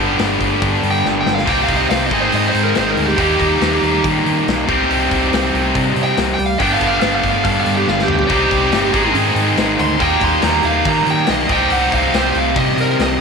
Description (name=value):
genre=classic rock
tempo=141 BPM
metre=4/4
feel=straight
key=C minor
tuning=A4 = 438 Hz
part: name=distorted electric guitar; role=riff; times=0.0-13.2 s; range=G2 to Ab4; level=-15 LUFS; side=equal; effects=overdrive
part: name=hollow-body short-scale fingered electric bass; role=bass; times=0.0-13.2 s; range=G1 to Eb3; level=-22 LUFS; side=equal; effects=none
part: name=big rock drum kit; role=drums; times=0.2-13.1 s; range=hi-hat, kick drum, snare drum, splash cymbal, toms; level=-23 LUFS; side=left 4 dB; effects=none
part: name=smooth overdriven lead guitar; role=melody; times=0.9-13.2 s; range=G4 to C6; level=-19 LUFS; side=right 3 dB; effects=slapback echo
room=light reverb, studio reverb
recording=1960s-style stereo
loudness=-13 LUFS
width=side -5 dB against mid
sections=0.0-13.2 A section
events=lead electric guitar solo 0.0-13.2; drum fill 1.1-1.5, 7.9-8.3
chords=0.0 G; 1.5 Cm; 2.1 Ab; 3.2 Eb; 4.7 Cm; 6.6 G; 8.3 Cm; 8.9 Ab; 10.0 Eb; 11.5 Cm